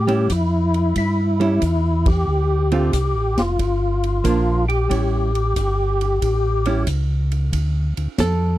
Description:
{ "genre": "soul jazz organ trio", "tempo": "91 BPM", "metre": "4/4", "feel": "swing 67% on 8ths", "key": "D minor", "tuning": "A4 = 440 Hz", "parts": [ { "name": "percussive tonewheel organ", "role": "melody", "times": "0.0-6.8 s", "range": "E4 to G4", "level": "-22 LUFS", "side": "left 2 dB", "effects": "slow rotary speaker, overdrive, chorus vibrato" }, { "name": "mellow tonewheel organ", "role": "bass", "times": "0.0-8.6 s", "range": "F1 to A2", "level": "-20 LUFS", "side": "equal", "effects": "chorus vibrato, slow rotary speaker" }, { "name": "archtop guitar, miked and amplified", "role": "accompaniment", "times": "0.1-8.6 s", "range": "D3 to A4", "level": "-22 LUFS", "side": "right 4 dB", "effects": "none" }, { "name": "swinging big-band drum kit", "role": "drums", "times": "0.1-8.4 s", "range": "hi-hat, kick drum, ride cymbal, snare drum", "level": "-27 LUFS", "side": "equal", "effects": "none" } ], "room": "little or no reverb", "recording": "dry, close 1970s-style studio recording", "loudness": "-17 LUFS", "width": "side -15 dB against mid", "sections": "0.0-7.5 A section; 7.5-8.6 B section", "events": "band accent 1.9-2.3; hollow-body jazz guitar solo 7.5-8.6", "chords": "0.0 A7; 2.3 Dm7; 3.6 Gm7; 4.9 A7; 7.5 Dm", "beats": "0.30 0.96 1.61 | 2.27 2.93 3.58 4.24 | 4.90 5.56 6.21 6.87 | 7.53 8.19" }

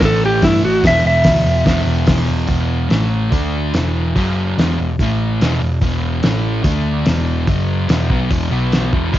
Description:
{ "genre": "garage rock duo or trio", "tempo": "145 BPM", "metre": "4/4", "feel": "straight", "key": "unclear", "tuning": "A4 = 442 Hz", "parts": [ { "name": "fuzz guitar", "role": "riff", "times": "0.0-9.2 s", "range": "E2 to D4", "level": "-19 LUFS", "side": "equal", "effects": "distortion, cassette tape" }, { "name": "hollow-body short-scale picked electric bass", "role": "bass", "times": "0.0-9.2 s", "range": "E1 to G2", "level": "-20 LUFS", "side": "equal", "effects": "overdrive" }, { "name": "cloth-damped thuddy drum kit", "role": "drums", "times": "0.0-9.2 s", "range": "hi-hat, kick drum, snare drum", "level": "-18 LUFS", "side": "equal", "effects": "none" }, { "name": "clean lap steel guitar", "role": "melody", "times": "0.1-2.3 s", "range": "E4 to E5", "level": "-16 LUFS", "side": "equal", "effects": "cassette tape, analog delay" } ], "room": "little or no reverb", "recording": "home recording on cassette, nothing above 7.7 kHz", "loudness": "-14 LUFS", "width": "side -13 dB against mid", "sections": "0.0-2.5 A section; 2.5-9.2 B section", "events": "none", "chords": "0.0 A5; 0.8 E5; 2.9 A5; 3.3 D5; 3.7 E5; 4.1 F#5; 4.6 E5; 5.0 A5; 5.4 E5; 6.2 A5; 6.6 D5; 7.1 E5; 7.5 F#5; 7.9 E5; 8.5 B5", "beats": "0.02 0.43 | 0.84 1.25 1.66 2.08 | 2.49 2.90 3.32 3.73 | 4.15 4.56 4.98 5.39 | 5.81 6.22 6.64 7.05 | 7.47 7.88 8.30 8.71 | 9.13" }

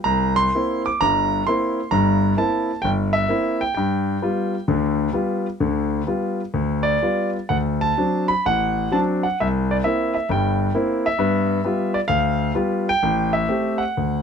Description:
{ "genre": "solo jazz", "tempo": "130 BPM", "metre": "4/4", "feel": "swing 66% on 8ths, rubato", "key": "unclear", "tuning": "A4 = 440 Hz", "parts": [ { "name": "clear concert grand piano", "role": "solo", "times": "0.0-14.2 s", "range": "G1 to D6", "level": "-18 LUFS", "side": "equal", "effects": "none" } ], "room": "light reverb", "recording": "close, detailed microphones", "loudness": "-18 LUFS", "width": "side -7 dB against mid", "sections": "0.0-14.2 A section", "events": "none", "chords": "0.1 C7; 3.8 G7; 7.5 D7; 9.4 C7; 11.2 G7; 13.0 Am7", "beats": "| 0.06 0.54 1.01 1.47 | 1.93 2.39 2.85 3.31 | 3.76 4.22 4.67 5.13 | 5.60 6.07 6.54 7.02 | 7.50 7.97 8.45 8.92 | 9.38 9.84 10.29 10.74 | 11.19 11.64 12.10 12.56 | 13.03 13.50 13.97" }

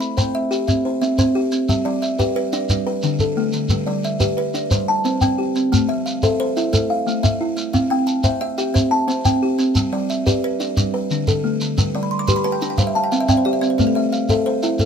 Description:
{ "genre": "southern african traditional, mbira-style interlocking cycle", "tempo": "119 BPM (dotted quarters)", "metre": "12/8", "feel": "straight", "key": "G mixolydian", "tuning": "A4 = 440 Hz", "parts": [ { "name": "buzzing kalimba", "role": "arpeggios", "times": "0.0-14.9 s", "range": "D3 to A5", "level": "-21 LUFS", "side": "left 4 dB", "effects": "none" }, { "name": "kalimba", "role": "arpeggios", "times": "0.0-14.9 s", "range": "D3 to D6", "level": "-21 LUFS", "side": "right 4 dB", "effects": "none" }, { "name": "shekere", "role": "percussion", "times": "0.0-14.9 s", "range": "none", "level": "-20 LUFS", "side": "equal", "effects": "none" } ], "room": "light reverb", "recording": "minimal, uncompressed stereo recording", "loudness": "-17 LUFS", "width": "side -7 dB against mid", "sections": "0.0-1.7 A section; 1.7-14.9 B section", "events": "kalimba fill 11.9-13.8", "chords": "0.0 C; 1.7 G; 2.7 D5; 3.7 G; 4.7 C5; 5.7 Am; 7.7 C; 9.8 G; 10.8 D5; 11.8 G; 12.8 C5; 13.8 Am", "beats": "0.17 0.67 1.18 | 1.68 2.19 2.69 3.19 | 3.70 4.20 4.71 5.21 | 5.72 6.22 6.73 7.23 | 7.74 8.24 8.75 9.25 | 9.76 10.26 10.77 11.27 | 11.77 12.28 12.78 13.28 | 13.79 14.29 14.79" }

